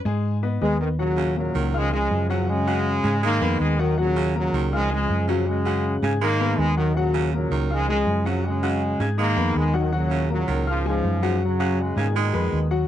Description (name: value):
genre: latin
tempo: 161 BPM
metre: 4/4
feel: straight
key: Eb minor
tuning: A4 = 437 Hz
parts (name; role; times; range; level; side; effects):
- clear upright piano; accompaniment; 0.1-12.9 s; Gb3 to Ab6; -28 LUFS; left 8 dB; none
- hollow-body short-scale fingered electric bass; bass; 0.1-12.9 s; Db2 to Ab2; -24 LUFS; right 1 dB; none
- bright trombone section; melody; 0.6-12.7 s; Ab2 to Bb3; -24 LUFS; equal; none
- raspy baritone saxophone; second line; 1.2-12.6 s; Db3 to Ab3; -29 LUFS; right 11 dB; none
room: little or no reverb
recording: dry, close 1970s-style studio recording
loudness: -20 LUFS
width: side -11 dB against mid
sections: 1.0-12.9 A section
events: none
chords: 0.2 Abm; 1.0 Ebm7; 1.7 Db; 2.5 Gbsus2; 3.2 Abmadd9; 4.0 Ebm7; 4.7 Db; 5.5 Gbsus2; 6.2 Abmadd9; 7.0 Ebm7; 7.7 Db; 8.4 Gbsus2; 9.2 Abmadd9; 9.9 Ebm7; 10.7 Db; 11.4 Gbsus2; 12.2 Abmadd9